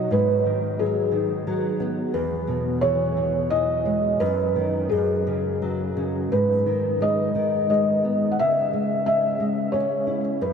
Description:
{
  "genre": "children's music, lullaby",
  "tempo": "88 BPM",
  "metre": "3/4",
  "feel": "rubato",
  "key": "unclear",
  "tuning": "A4 = 440 Hz",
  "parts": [
    { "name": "felt-muted upright piano", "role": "melody", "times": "0.0-10.5 s", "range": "G#4 to F#5", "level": "-22 LUFS", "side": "equal", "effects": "wide subtle chorus, analog delay" },
    { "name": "nylon-string guitar", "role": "accompaniment", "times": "0.0-10.5 s", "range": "E2 to E4", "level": "-25 LUFS", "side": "equal", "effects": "ensemble chorus" }
  ],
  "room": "wet huge ambient reverb, RT60 8.3 s",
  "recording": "dreamy mix soaked in reverb",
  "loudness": "-20 LUFS",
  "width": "side -6 dB against mid",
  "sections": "0.0-10.5 A section",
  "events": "none",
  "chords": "0.1 G#m7; 2.1 E; 4.2 B/F#; 4.9 F#sus2; 6.3 G#m; 8.4 C#m",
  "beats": "| 0.10 0.78 1.46 | 2.13 2.81 3.50 | 4.19 4.89 5.60 | 6.31 7.01 7.70 | 8.39 9.07 9.74 | 10.42"
}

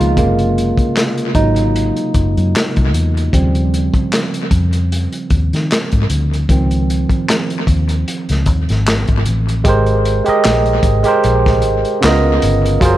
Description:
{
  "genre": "R&B, neo-soul",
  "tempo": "76 BPM",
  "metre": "4/4",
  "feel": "swing 55% on 16ths",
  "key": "Ab major",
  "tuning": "A4 = 440 Hz",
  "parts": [
    { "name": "barky tine electric piano", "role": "accompaniment", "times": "0.0-13.0 s", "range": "C3 to Eb5", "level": "-16 LUFS", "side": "right 2 dB", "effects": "overdrive, tape echo" },
    { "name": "vintage muted fingered electric bass", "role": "bass", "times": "0.0-13.0 s", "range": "Gb1 to Eb3", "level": "-15 LUFS", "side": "left 1 dB", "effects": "none" },
    { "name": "crunchy breakbeat drum kit", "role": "drums", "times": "0.0-13.0 s", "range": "handclaps, hi-hat, kick drum, snare drum", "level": "-17 LUFS", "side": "left 1 dB", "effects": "tape echo" }
  ],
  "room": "studio reverb",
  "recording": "echo-heavy mix",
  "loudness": "-12 LUFS",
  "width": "side -14 dB against mid",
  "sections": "0.0-9.6 A section; 9.6-13.0 B section",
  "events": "tine electric piano solo 0.0-9.6",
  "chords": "0.2 Gbmaj9#11; 3.3 Eb13; 6.5 Dbmaj9; 9.6 Abmaj9; 12.0 Db13",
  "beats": "| 0.17 0.96 1.75 2.54 | 3.33 4.12 4.91 5.70 | 6.49 7.28 8.07 8.86 | 9.65 10.44 11.23 12.02 | 12.80"
}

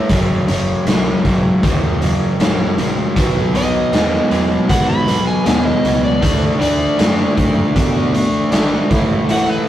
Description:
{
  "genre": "blues rock power trio and southern rock",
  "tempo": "78 BPM",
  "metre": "4/4",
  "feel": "straight",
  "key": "unclear",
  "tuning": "A4 = 440 Hz",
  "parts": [
    { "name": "overdriven slide guitar", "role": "melody", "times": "0.0-9.7 s", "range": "B4 to B5", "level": "-21 LUFS", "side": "equal", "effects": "none" },
    { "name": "crunchy overdriven guitar", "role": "riff", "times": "0.0-9.7 s", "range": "F#2 to D4", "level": "-16 LUFS", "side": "equal", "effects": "none" },
    { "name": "growling picked electric bass", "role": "bass", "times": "0.1-9.5 s", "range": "F#1 to B2", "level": "-23 LUFS", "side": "equal", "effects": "overdrive" },
    { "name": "raw garage drum kit", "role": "drums", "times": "0.1-9.5 s", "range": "hi-hat, kick drum, snare drum", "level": "-18 LUFS", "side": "equal", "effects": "none" }
  ],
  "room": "light reverb",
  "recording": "rough rehearsal-room recording",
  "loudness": "-13 LUFS",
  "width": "side -12 dB against mid",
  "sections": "0.0-9.7 A section",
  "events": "none",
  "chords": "0.1 F#; 3.2 B; 6.2 D; 8.9 A5",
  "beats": "| 0.09 0.86 1.63 2.40 | 3.16 3.93 4.70 5.46 | 6.23 6.99 7.76 8.53 | 9.29"
}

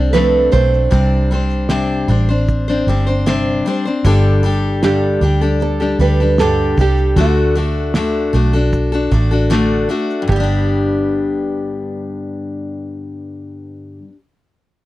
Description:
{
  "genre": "acoustic pop",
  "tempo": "77 BPM",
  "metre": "4/4",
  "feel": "straight",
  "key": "G major",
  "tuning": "A4 = 440 Hz",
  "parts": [
    { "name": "nylon-string guitar", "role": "melody", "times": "0.0-14.0 s", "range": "F#4 to C5", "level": "-19 LUFS", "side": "right 5 dB", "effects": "none" },
    { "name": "picked steel-string acoustic guitar", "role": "accompaniment", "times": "0.0-14.2 s", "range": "G2 to C5", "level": "-17 LUFS", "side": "left 3 dB", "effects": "none" },
    { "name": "vintage muted fingered electric bass", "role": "bass", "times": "0.0-14.0 s", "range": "G1 to D2", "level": "-16 LUFS", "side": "right 1 dB", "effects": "none" },
    { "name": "cloth-damped thuddy drum kit", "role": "drums", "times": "0.1-10.5 s", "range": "kick drum, shaker, snare drum", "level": "-19 LUFS", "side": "right 1 dB", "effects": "none" }
  ],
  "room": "little or no reverb",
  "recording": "dry, close 1970s-style studio recording",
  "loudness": "-13 LUFS",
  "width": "side -16 dB against mid",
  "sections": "0.0-10.3 A section; 10.3-13.4 B section",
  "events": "none",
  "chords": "0.0 F6; 0.9 Gsus2; 7.2 D; 10.3 G",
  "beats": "0.14 | 0.92 1.70 2.48 3.26 | 4.04 4.82 5.60 6.38 | 7.17 7.95 8.73 9.51 | 10.29 11.07 11.85 12.63"
}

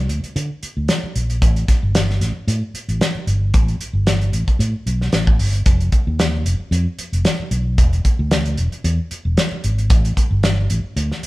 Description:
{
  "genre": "straight-eighth soul blues",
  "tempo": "113 BPM",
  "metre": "4/4",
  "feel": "swing 54% on 16ths",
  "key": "unclear",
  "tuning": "A4 = 440 Hz",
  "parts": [
    { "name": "fingered electric bass", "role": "bass", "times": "0.0-11.3 s", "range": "E1 to D3", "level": "-19 LUFS", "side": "equal", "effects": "none" },
    { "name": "warm soul drum kit", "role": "drums", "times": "0.1-11.3 s", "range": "hi-hat, kick drum, snare drum", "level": "-18 LUFS", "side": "equal", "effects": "none" }
  ],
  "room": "light reverb",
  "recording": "band playing live in one room",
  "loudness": "-16 LUFS",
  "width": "side -19 dB against mid",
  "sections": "0.0-11.3 A section",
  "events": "none",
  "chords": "none",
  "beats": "0.36 0.89 | 1.42 1.95 2.48 3.01 | 3.54 4.07 4.60 5.13 | 5.67 6.20 6.73 7.26 | 7.79 8.32 8.85 9.38 | 9.91 10.44 10.97"
}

